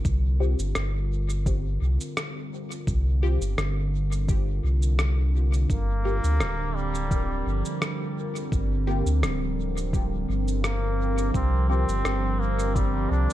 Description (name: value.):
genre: ambient dub.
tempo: 85 BPM.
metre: 4/4.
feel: swing 53% on 16ths.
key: unclear.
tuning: A4 = 439 Hz.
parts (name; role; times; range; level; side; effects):
warm analog pad; sustained chords; 0.0-13.3 s; D3 to Bb4; -31 LUFS; right 1 dB; chorus, vintage 12-bit sampler grit.
warm sub bass; bass; 0.0-13.3 s; D1 to D2; -24 LUFS; equal; none.
electronic cabasa and rim click; drums; 0.0-13.3 s; none; -33 LUFS; equal; dub echo.
electronic kick drum; drums; 0.0-12.9 s; none; -26 LUFS; equal; none.
filtered dub chord stab; stabs; 0.4-11.8 s; Bb3 to G4; -36 LUFS; left 3 dB; phaser, wide subtle chorus, dub echo.
trombone with straight mute; melody; 5.7-13.3 s; G3 to D4; -32 LUFS; equal; dub echo.
room: digital ambience.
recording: dark, warm production.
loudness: -23 LUFS.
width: side -14 dB against mid.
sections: 0.0-13.3 A section.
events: none.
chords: 0.1 Csus4; 5.7 Gm7; 11.3 Csus4.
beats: | 0.05 0.76 1.46 2.17 | 2.88 3.58 4.29 4.99 | 5.70 6.41 7.11 7.82 | 8.52 9.23 9.93 10.64 | 11.35 12.05 12.76.